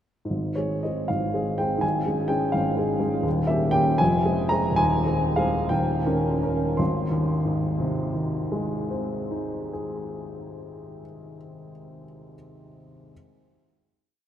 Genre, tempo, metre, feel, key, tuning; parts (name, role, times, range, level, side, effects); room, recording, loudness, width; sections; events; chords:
classical, romantic character piece for solo piano; 52-85 BPM (dotted quarters); 6/8; rubato; Ab major; A4 = 440 Hz
warm upright piano; solo; 0.2-13.1 s; Eb1 to C6; -23 LUFS; equal
wet huge ambient reverb, RT60 6.9 s; in a vast, echoing space; -22 LUFS; side -10 dB against mid
0.3-6.8 A section; 6.8-10.9 final chord
slowing down 2.5-6.8
0.3 Ab; 1.8 Db/Ab; 3.3 Eb7; 4.0 Fm; 4.8 Ab/Eb; 5.7 Eb7; 6.8 Ab